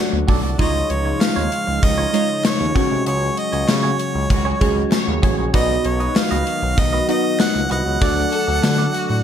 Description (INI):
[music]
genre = 1980s-style pop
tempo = 97 BPM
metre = 4/4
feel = straight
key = unclear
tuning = A4 = 439 Hz
[part]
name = glassy digital keys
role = accompaniment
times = 0.0-9.2 s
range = G#3 to F#5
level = -24 LUFS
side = equal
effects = chorus, phaser
[part]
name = warm analog pad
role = sustained chords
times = 0.0-9.2 s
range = C#3 to F#4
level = -27 LUFS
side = equal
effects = chorus
[part]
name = clean electric guitar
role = riff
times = 0.1-9.1 s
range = D#4 to D#5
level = -29 LUFS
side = right 4 dB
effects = wide subtle chorus
[part]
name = smooth synth bass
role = bass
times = 0.1-9.2 s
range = A1 to D3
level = -22 LUFS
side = equal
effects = none
[part]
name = gated 80s drum kit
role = drums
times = 0.3-9.1 s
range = hi-hat, kick drum, snare drum, tambourine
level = -19 LUFS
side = left 1 dB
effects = none
[part]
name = clear harmonica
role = melody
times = 0.6-9.2 s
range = C#5 to F#5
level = -23 LUFS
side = right 1 dB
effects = tape echo
[part]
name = group handclap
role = percussion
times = 1.2-8.8 s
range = none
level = -39 LUFS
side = left 3 dB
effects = none
[part]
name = warm symphonic violin section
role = second line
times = 4.3-9.2 s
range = F#4 to C#5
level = -28 LUFS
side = left 2 dB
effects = tape echo
[sound]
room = moderate plate reverb, RT60 2.1 s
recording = dark, warm production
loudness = -16 LUFS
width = side -9 dB against mid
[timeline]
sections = 0.0-9.2 A section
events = none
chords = 0.0 D; 0.6 C#add9; 2.8 F#sus2; 5.5 B; 8.0 D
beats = | 0.59 1.21 1.83 2.45 | 3.07 3.69 4.30 4.92 | 5.54 6.16 6.78 7.40 | 8.02 8.63